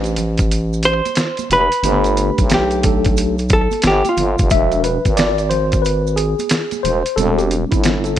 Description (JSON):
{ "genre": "hip hop, jazz-hop", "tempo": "90 BPM", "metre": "4/4", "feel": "swing 64% on 16ths", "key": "unclear", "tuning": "A4 = 439 Hz", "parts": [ { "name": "hollow-body jazz guitar", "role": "melody", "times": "0.0-4.5 s", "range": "F4 to D5", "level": "-17 LUFS", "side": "right 1 dB", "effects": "slapback echo" }, { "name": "mellow tine electric piano", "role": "accompaniment", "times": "0.0-8.2 s", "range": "F3 to E5", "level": "-19 LUFS", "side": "left 1 dB", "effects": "medium stereo tremolo" }, { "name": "growling FM bass", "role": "bass", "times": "0.0-8.2 s", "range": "E1 to B1", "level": "-19 LUFS", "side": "equal", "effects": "none" }, { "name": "dusty soul sampler-style drum kit", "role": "drums", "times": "0.0-8.2 s", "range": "hi-hat, kick drum, snare drum", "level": "-18 LUFS", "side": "equal", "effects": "overdrive" }, { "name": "maracas and congas", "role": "percussion", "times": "0.1-8.2 s", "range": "none", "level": "-30 LUFS", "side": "right 12 dB", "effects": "none" } ], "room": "little or no reverb", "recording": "none", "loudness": "-14 LUFS", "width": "side -11 dB against mid", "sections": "0.0-4.5 A section; 4.5-8.2 A section", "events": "hollow-body jazz guitar solo 0.0-4.5; tine electric piano solo 4.5-8.2", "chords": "0.0 D7(no3) (rootless); 1.8 Gadd9; 4.5 E7b9; 7.2 Am11/E" }